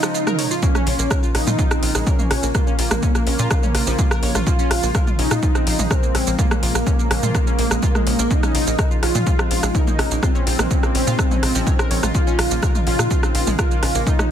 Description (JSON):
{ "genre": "melodic techno", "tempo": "125 BPM", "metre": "4/4", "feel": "straight", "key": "Bb minor", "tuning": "A4 = 440 Hz", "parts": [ { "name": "wide unison lead", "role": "melody", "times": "0.0-14.3 s", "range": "Bb3 to F4", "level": "-24 LUFS", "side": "equal", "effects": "analog chorus, sidechain pumping, tape echo" }, { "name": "lush unison pad", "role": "sustained chords", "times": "0.0-14.3 s", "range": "Db3 to F4", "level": "-28 LUFS", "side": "equal", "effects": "chorus, vintage 12-bit sampler grit, sidechain pumping" }, { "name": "analog pluck", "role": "arpeggios", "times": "0.0-14.3 s", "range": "F3 to Db6", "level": "-28 LUFS", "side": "equal", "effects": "chorus, cassette tape, sidechain pumping, tape echo" }, { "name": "deep house drum kit", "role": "drums", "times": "0.0-14.3 s", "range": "hi-hat, rim click, shaker, toms", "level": "-23 LUFS", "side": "right 1 dB", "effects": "overdrive" }, { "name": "electronic kick drum", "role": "drums", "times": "0.6-14.2 s", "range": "none", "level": "-19 LUFS", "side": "equal", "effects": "none" }, { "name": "tight sequencer bass", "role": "bass", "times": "0.9-14.0 s", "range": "Bb1 to Bb2", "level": "-22 LUFS", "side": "equal", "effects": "sidechain pumping" } ], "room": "light reverb, digital ambience", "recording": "dense, heavily limited modern master", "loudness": "-16 LUFS", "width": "side -9 dB against mid", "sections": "0.0-14.3 A section", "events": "break 0.0-0.6", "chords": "0.0 Dbadd9; 0.6 Bbm; 8.3 Dbadd9/Bb", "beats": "0.15 | 0.63 1.11 1.59 2.07 | 2.55 3.03 3.51 3.99 | 4.47 4.95 5.43 5.91 | 6.39 6.87 7.35 7.83 | 8.31 8.79 9.27 9.75 | 10.23 10.71 11.19 11.67 | 12.15 12.63 13.11 13.59 | 14.07" }